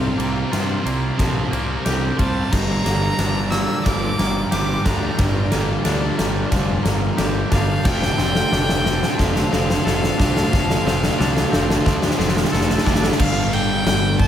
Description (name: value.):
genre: post-rock.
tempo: 90 BPM.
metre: 4/4.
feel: straight.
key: G minor.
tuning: A4 = 439 Hz.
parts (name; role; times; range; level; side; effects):
bright violin; melody; 0.0-14.3 s; F5 to E6; -25 LUFS; equal; digital delay.
warm studio string section; sustained chords; 0.0-13.2 s; F4 to A5; -34 LUFS; left 1 dB; none.
twangy electric guitar; arpeggios; 0.0-13.2 s; G2 to A4; -28 LUFS; left 2 dB; slapback echo, digital delay.
sludgy distorted guitar; riff; 0.0-14.3 s; G2 to D4; -23 LUFS; right 1 dB; overdrive.
fuzz fingered electric bass; bass; 0.0-14.3 s; F1 to G2; -24 LUFS; equal; overdrive.
huge arena drum kit; drums; 0.2-14.3 s; crash cymbal, kick drum, ride cymbal, snare drum; -21 LUFS; equal; none.
room: moderate lush hall reverb, RT60 2.3 s.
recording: big arena sound.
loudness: -17 LUFS.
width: side -10 dB against mid.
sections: 0.0-13.2 A section; 13.2-14.3 B section.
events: build-up 0.0-13.2; drum fill 0.0-13.2.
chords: 0.0 C7sus4; 2.5 Gm7; 7.9 Dm7/F; 13.2 G7(no3).